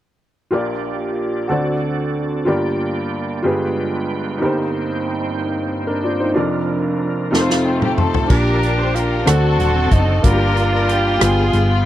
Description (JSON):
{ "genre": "slow gospel", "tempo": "62 BPM (dotted quarters)", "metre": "6/8", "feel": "straight", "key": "Bb major", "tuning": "A4 = 440 Hz", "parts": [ { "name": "clear upright piano", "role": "accompaniment", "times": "0.5-11.9 s", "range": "F1 to C6", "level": "-20 LUFS", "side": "equal", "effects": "none" }, { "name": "bright tonewheel organ", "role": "sustained chords", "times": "0.5-11.9 s", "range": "G2 to C6", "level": "-25 LUFS", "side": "right 4 dB", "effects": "slow rotary speaker, overdrive, chorus vibrato" }, { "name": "clear French horn section", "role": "sustained chords", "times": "0.5-8.3 s", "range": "G2 to Bb4", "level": "-30 LUFS", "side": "left 2 dB", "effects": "none" }, { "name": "warm studio string section", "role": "melody", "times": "7.3-11.9 s", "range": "A3 to C5", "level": "-21 LUFS", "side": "left 4 dB", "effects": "slapback echo" }, { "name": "natural country drum kit", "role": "drums", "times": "7.3-11.7 s", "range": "crash cymbal, hi-hat, kick drum, rim click, snare drum, toms", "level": "-18 LUFS", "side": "equal", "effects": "none" }, { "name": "growling tenor saxophone", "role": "melody", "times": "8.3-11.9 s", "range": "D4 to F#4", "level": "-21 LUFS", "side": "right 2 dB", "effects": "none" }, { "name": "hollow-body short-scale fingered electric bass", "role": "bass", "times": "8.3-11.8 s", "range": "Eb1 to D2", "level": "-18 LUFS", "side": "equal", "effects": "none" } ], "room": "little or no reverb", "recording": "dry, close 1970s-style studio recording", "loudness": "-16 LUFS", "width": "side -13 dB against mid", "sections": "0.5-8.3 A section; 8.3-11.9 B section", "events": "upright piano fill 7.3-8.3; drum fill 7.3-8.3", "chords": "0.5 Bb6; 1.5 D7; 2.5 Gm7; 3.4 G7b9; 4.4 Cm7/G; 6.4 Bb/F; 7.3 F7; 8.3 Bb6; 9.3 D7; 10.2 Gm7; 11.2 G7b9", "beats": "| 0.52 1.49 | 2.47 3.44 | 4.41 5.38 | 6.36 7.33 | 8.30 9.27 | 10.24 11.21" }